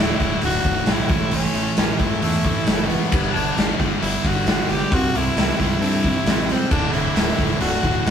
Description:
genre	classic rock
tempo	134 BPM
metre	4/4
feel	straight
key	D major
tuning	A4 = 439 Hz
part	raspy tenor saxophone	melody	0.0-8.1 s	B3 to G4	-25 LUFS	left 1 dB	analog delay
part	bright upright piano	accompaniment	0.0-8.1 s	B3 to A4	-33 LUFS	right 1 dB	none
part	cranked stack guitar	riff	0.0-8.1 s	D2 to C4	-26 LUFS	left 6 dB	overdrive
part	sludgy distorted guitar	riff	0.0-8.1 s	D2 to C4	-25 LUFS	right 5 dB	overdrive
part	growling picked electric bass	bass	0.0-8.1 s	D1 to G2	-28 LUFS	equal	overdrive
part	big rock drum kit	drums	0.2-8.1 s	crash cymbal, hi-hat, kick drum, snare drum	-21 LUFS	equal	none
room	moderate studio reverb, RT60 0.9 s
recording	band playing live in one room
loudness	-17 LUFS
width	side -8 dB against mid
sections	0.0-8.1 A section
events	none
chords	0.0 Dadd9; 1.1 A; 3.1 G; 4.9 C; 6.7 Dadd9

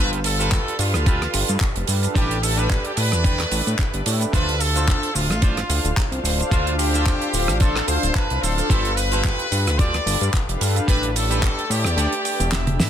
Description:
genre	nu-disco, nu disco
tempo	110 BPM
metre	4/4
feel	swing 56% on 16ths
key	D dorian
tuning	A4 = 442 Hz
part	brilliant trumpet section	melody	0.0-12.8 s	F4 to D5	-26 LUFS	equal	ping-pong delay
part	muted studio violin section	sustained chords	0.0-12.9 s	G3 to F5	-32 LUFS	equal	sidechain pumping
part	clean electric guitar	riff	0.0-12.9 s	D4 to A5	-29 LUFS	right 2 dB	analog chorus
part	fat analog bass	bass	0.0-12.9 s	D1 to A2	-22 LUFS	equal	none
part	damped 70s drum kit	drums	0.1-12.9 s	cabasa, handclaps, hi-hat, rim click, snare drum, toms	-25 LUFS	right 2 dB	studio reverb, soft clipping on snare
part	electronic kick drum	drums	0.5-11.5 s	none	-20 LUFS	equal	studio reverb
part	warm analog pad	accompaniment	1.3-12.9 s	D4 to F5	-29 LUFS	left 1 dB	chorus
room	little or no reverb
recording	dense, heavily limited modern master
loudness	-18 LUFS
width	side -9 dB against mid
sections	0.0-12.9 A section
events	clean electric guitar fill 7.9-8.7, 12.0-12.9; kick drops out 12.0-12.9; drum fill 12.5-12.9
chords	0.0 G9; 2.2 A9sus4; 4.3 Dm7; 8.7 G9; 10.9 A9sus4

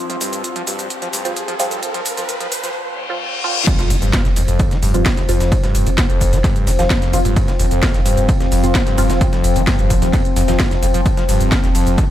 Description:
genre	driving peak-time techno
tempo	130 BPM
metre	4/4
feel	straight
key	unclear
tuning	A4 = 442 Hz
part	filtered dub chord stab	stabs	0.0-10.6 s	F3 to F4	-25 LUFS	right 2 dB	phaser, analog chorus, cassette tape, sidechain pumping, tape echo
part	overtone-sweeping drone	drone	0.0-12.1 s	F3 to C4	-23 LUFS	left 3 dB	chorus, built-in reverb, sidechain pumping
part	riser, reverse cymbal and impact	sound effects	0.3-5.5 s	none	-24 LUFS	left 1 dB	none
part	screaming distorted acid line	riff	0.1-12.0 s	Eb2 to F3	-23 LUFS	equal	distortion, wide subtle chorus, sidechain pumping, tape echo
part	techno drum kit	drums	0.1-12.1 s	crash cymbal, hi-hat, shaker, snare drum	-23 LUFS	equal	none
part	breakbeat sampler-style drum kit	drums	3.7-12.1 s	hi-hat, ride cymbal, snare drum	-32 LUFS	right 1 dB	sidechain pumping on cymbals, high-pass filter on cymbals, high-pass filter on snare, sidechain pumping on hats, high-pass filter on hats
part	electronic kick drum	drums	3.7-12.1 s	none	-17 LUFS	equal	none
part	warm sub bass	bass	3.9-12.0 s	F1	-18 LUFS	equal	tube saturation, sidechain pumping, low-pass filter
room	little or no reverb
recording	high-pass filter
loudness	-14 LUFS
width	side -12 dB against mid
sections	0.0-3.7 A section; 3.7-12.1 B section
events	build-up 0.0-3.7; riser 0.3-2.7; filter sweep on synth stab 0.0-3.7; reverse cymbal 2.7-3.7; drop 3.7-12.1; impact 3.7-5.5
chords	0.0 F5

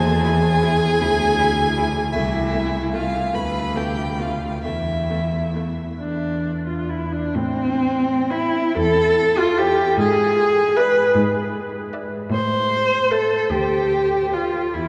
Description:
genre	classical, slow romantic movement for string quartet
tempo	41-54 BPM (dotted quarters)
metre	6/8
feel	rubato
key	A minor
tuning	A4 = 440 Hz
part	rich violin	melody	0.0-14.6 s	E5 to B5	-28 LUFS	equal	none
part	dark violin	second line	0.0-14.6 s	E4 to D5	-29 LUFS	equal	none
part	rich cello	bass	0.0-14.9 s	C2 to A2	-26 LUFS	equal	none
part	rich viola	accompaniment	0.2-14.9 s	A3 to C5	-22 LUFS	equal	none
room	wet cathedral reverb, RT60 5.0 s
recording	dark, warm production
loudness	-20 LUFS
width	mono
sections	0.0-7.4 A section; 7.4-14.9 B section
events	none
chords	0.0 E; 1.0 E7/D; 2.1 Am/C; 3.3 G9/D; 4.6 N.C.; 6.0 Dmadd9/E; 7.4 Am; 10.0 E7/G#; 12.3 Am; 13.5 Dm

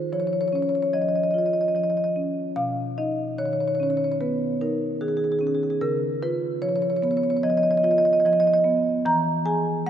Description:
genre	classical, contemporary piece for solo marimba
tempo	74 BPM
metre	4/4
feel	straight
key	Db major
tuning	A4 = 440 Hz
part	marimba with medium mallets	solo	0.0-9.9 s	Cb3 to Bb5	-21 LUFS	equal	none
room	wet cathedral reverb, RT60 4.3 s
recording	none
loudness	-21 LUFS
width	side -10 dB against mid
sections	0.0-9.9 A section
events	none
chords	0.0 Ebsus2; 2.6 Cbadd9; 5.8 Db9; 9.1 E

